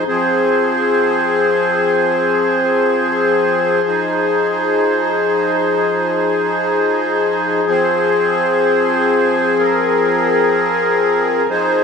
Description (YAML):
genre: hip hop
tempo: free time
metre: none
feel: none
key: F minor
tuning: A4 = 442 Hz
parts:
  - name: accordion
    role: solo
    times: 0.0-11.8 s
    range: F3 to C5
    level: -13 LUFS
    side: left 1 dB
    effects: light tremolo tuning
room: moderate shimmer reverb, RT60 7.5 s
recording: none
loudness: -13 LUFS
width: side -6 dB against mid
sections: 0.1-11.8 A section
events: none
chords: 0.1 Fm; 3.9 Ab6; 7.7 Fm